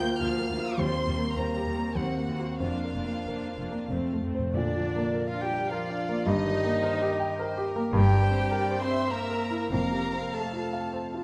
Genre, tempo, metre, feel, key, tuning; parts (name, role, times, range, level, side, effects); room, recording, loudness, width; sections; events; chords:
classical, romantic movement for piano and orchestra; 88-109 BPM; 3/4; rubato; Bb major; A4 = 440 Hz
rich chamber violin section; melody; 0.0-11.2 s; Bb4 to G6; -41 LUFS; equal
warm concert grand piano; melody; 0.0-11.2 s; D2 to G5; -32 LUFS; equal
dark chamber violin section; second line; 0.0-11.2 s; F4 to C6; -41 LUFS; equal
rich chamber viola section; accompaniment; 0.0-11.2 s; F3 to C5; -40 LUFS; equal
mellow French horn section; sustained chords; 0.0-11.2 s; D3 to F4; -38 LUFS; equal
clear studio cello section; bass; 0.2-10.2 s; D2 to Bb2; -35 LUFS; equal
warm chamber double bass section; bass; 0.2-10.2 s; F1 to Eb2; -36 LUFS; equal
timpani; percussion; 3.9-5.4, 9.7-10.6 s; F2 to Bb2; -40 LUFS; equal
concert flute; second line; 4.5-11.2 s; D5 to C6; -36 LUFS; equal
moderate scoring stage reverb, RT60 1.8 s; close, detailed microphones; -28 LUFS; mono
0.0-4.5 A section; 4.5-11.2 B section
timpani fill 3.9-4.5
0.0 Bb/D; 0.8 Cm7/Eb; 2.0 Cm7b5/Eb; 2.6 Bb/F; 3.9 F; 4.5 Bb; 6.3 Eb/G; 7.9 C7/G; 9.7 F